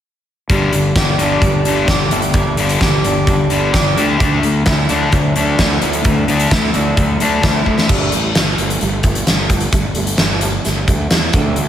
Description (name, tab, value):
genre	quiet-loud alternative rock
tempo	130 BPM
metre	4/4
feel	straight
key	unclear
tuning	A4 = 436 Hz
part	electric guitar through a small old amp	arpeggios	0.5-11.7 s	D3 to G4	-20 LUFS	right 2 dB	analog delay, slapback echo
part	fuzz guitar	riff	0.5-7.9 s	G2 to D4	-17 LUFS	left 3 dB	distortion, slapback echo
part	fuzz fingered electric bass	bass	0.5-11.7 s	G1 to E2	-20 LUFS	equal	overdrive
part	big rock drum kit	drums	0.5-11.7 s	crash cymbal, hi-hat, kick drum, snare drum	-16 LUFS	equal	none
room	moderate lush hall reverb, RT60 1.8 s, studio reverb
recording	big arena sound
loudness	-12 LUFS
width	side -10 dB against mid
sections	0.5-7.9 A section; 7.9-11.7 B section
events	drum fill 7.7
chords	0.5 Gsus2; 4.0 Dadd9; 7.9 Gsus2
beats	| 0.49 0.96 1.42 1.89 | 2.35 2.81 3.27 3.74 | 4.20 4.66 5.12 5.58 | 6.04 6.51 6.97 7.43 | 7.89 8.35 8.81 9.27 | 9.73 10.19 10.65 11.11 | 11.57